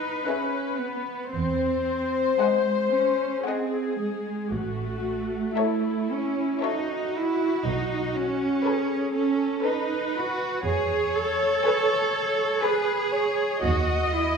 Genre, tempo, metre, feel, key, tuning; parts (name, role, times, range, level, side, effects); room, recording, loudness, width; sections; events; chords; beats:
classical, slow romantic movement for string orchestra; 55-62 BPM; 3/4; rubato; E major; A4 = 440 Hz
dark studio viola section; accompaniment; 0.0-14.4 s; E4 to D#5; -27 LUFS; left 4 dB
warm studio cello section; bass; 0.0-14.4 s; G#3 to A4; -26 LUFS; right 4 dB
warm studio violin section; melody; 0.3-13.4 s; B4 to F#5; -34 LUFS; left 8 dB
rich studio violin section; second line; 0.3-13.4 s; G#4 to D#5; -32 LUFS; left 3 dB
warm studio double bass section; bass; 1.3-14.4 s; A1 to E2; -30 LUFS; right 3 dB
wet scoring stage reverb, RT60 1.5 s; minimal, uncompressed stereo recording; -23 LUFS; side -5 dB against mid
0.0-14.4 A section
0.0 E; 1.3 G#7/E; 4.5 A; 7.6 B7; 10.7 E; 13.6 B/D# (rootless)
0.26 | 1.32 2.39 3.46 | 4.52 5.57 6.62 | 7.65 8.66 9.66 | 10.67 11.67 12.64 | 13.63